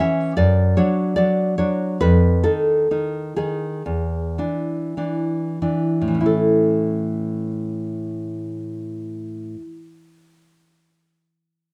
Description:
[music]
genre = romantic piece for solo classical guitar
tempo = 43-82 BPM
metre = 4/4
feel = rubato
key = A major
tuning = A4 = 439 Hz
[part]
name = nylon-string guitar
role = solo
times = 0.0-9.8 s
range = E2 to E5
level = -21 LUFS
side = equal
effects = none
[sound]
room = moderate small room reverb, RT60 0.5 s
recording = rough home demo mix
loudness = -21 LUFS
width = mono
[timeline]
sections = 0.0-6.3 A section; 6.3-11.2 B section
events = slowing down 0.0-6.3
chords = 0.4 D/F#; 2.0 F7; 3.9 E7; 6.3 A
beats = 0.36 1.16 | 2.01 2.90 3.85 4.96 | 6.27 7.47 8.70

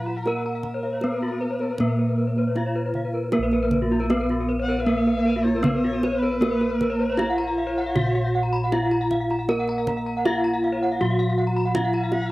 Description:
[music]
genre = Balinese gamelan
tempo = 78 BPM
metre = 4/4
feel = straight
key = Bb pelog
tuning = A4 = 441 Hz
[part]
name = gamelan-type bronze metallophone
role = melody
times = 0.0-12.3 s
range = Bb3 to Bb4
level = -24 LUFS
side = equal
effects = cassette tape
[part]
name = dark erhu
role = second line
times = 0.0-12.3 s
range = Bb4 to Gb5-43c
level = -35 LUFS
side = left 2 dB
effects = cassette tape
[part]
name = gamelan-type bronze metallophone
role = accompaniment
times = 0.0-3.3, 9.5-12.3 s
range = Gb3-40c to Bb3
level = -32 LUFS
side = equal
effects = cassette tape
[part]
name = gamelan-type bronze metallophone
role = arpeggios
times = 0.0-12.3 s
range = F4-45c to Cb6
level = -30 LUFS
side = left 3 dB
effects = cassette tape, tape echo
[part]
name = gamelan-type bossed gongs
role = bass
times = 0.0-12.3 s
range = Bb1 to Bb4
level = -28 LUFS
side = equal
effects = none
[part]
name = gamelan-type bronze metallophone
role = arpeggios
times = 0.1-12.2 s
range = Bb4 to Bb5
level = -30 LUFS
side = right 2 dB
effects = cassette tape
[part]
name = kendang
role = percussion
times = 0.1-12.3 s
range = none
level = -29 LUFS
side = right 2 dB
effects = none
[sound]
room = moderate booth ambience, RT60 0.2 s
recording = home recording on cassette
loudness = -20 LUFS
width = side -18 dB against mid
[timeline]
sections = 0.0-3.3 A section; 3.3-12.3 A section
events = none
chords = none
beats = | 0.26 1.03 1.80 2.57 | 3.34 4.11 4.88 5.65 | 6.42 7.18 7.96 8.72 | 9.49 10.26 11.01 11.75

